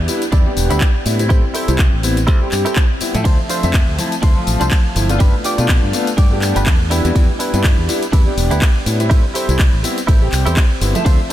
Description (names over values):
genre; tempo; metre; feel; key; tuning
filtered disco house; 123 BPM; 4/4; swing 56% on 16ths; unclear; A4 = 439 Hz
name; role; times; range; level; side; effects
dark concert grand piano; accompaniment; 0.0-11.3 s; F3 to E5; -21 LUFS; left 1 dB; phaser, sidechain pumping
modern bright fingered electric bass; bass; 0.0-11.2 s; E1 to B2; -18 LUFS; equal; sidechain pumping
direct-recorded clean electric guitar; riff; 0.1-11.3 s; D4 to D5; -24 LUFS; right 2 dB; analog chorus, sidechain pumping
house drum kit; drums; 0.1-11.3 s; handclaps, hi-hat, ride cymbal, tambourine; -23 LUFS; left 1 dB; sidechain pumping on hats, studio reverb, sidechain pumping on perc, sidechain pumping on cymbals
electronic kick drum; drums; 0.3-11.2 s; none; -13 LUFS; equal; studio reverb
room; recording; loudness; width
light reverb, digital ambience; none; -13 LUFS; side -13 dB against mid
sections
0.0-11.3 A section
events
none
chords
0.0 Em7; 1.3 Am7; 3.3 Dm7; 5.2 G7; 6.9 Em7; 9.1 Am7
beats
0.33 0.81 | 1.30 1.79 2.28 2.77 | 3.25 3.74 4.23 4.72 | 5.21 5.69 6.18 6.67 | 7.16 7.64 8.13 8.62 | 9.11 9.60 10.08 10.57 | 11.06